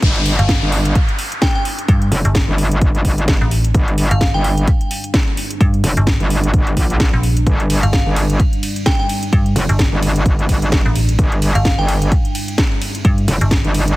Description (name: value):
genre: bass house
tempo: 129 BPM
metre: 4/4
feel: swing 57% on 16ths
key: unclear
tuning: A4 = 444 Hz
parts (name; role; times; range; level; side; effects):
- deep dark ambient pad; sustained chords; 1.6-14.0 s; G3 to E5; -28 LUFS; right 1 dB; chorus, built-in reverb, sidechain pumping
- metallic wobble bass; bass; 0.0-14.0 s; F1 to Bb1; -16 LUFS; equal; distortion, chorus, overdrive, sidechain pumping
- electronic kick drum; drums; 0.0-13.6 s; none; -16 LUFS; equal; none
- house drum kit; drums; 0.0-14.0 s; hi-hat, ride cymbal, snare drum; -22 LUFS; equal; overdrive
- downlifter; sound effects; 0.0-3.7 s; none; -24 LUFS; left 1 dB; none
- glassy synth bell; melody; 0.4-4.5, 7.8-12.0 s; F5 to G5; -25 LUFS; right 1 dB; chorus, digital delay
- metallic FM bass; bass; 0.4-13.6 s; G1 to G2; -15 LUFS; equal; overdrive, sidechain pumping
room: digital ambience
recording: heavily compressed radio sound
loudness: -13 LUFS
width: side -18 dB against mid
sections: 0.0-14.0 A section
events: drop 0.0-14.0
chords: 0.0 G5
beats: | 0.03 0.49 0.95 1.42 | 1.89 2.35 2.81 3.28 | 3.75 4.21 4.68 5.14 | 5.61 6.07 6.54 7.00 | 7.47 7.93 8.40 8.86 | 9.33 9.79 10.26 10.72 | 11.19 11.65 12.12 12.58 | 13.05 13.51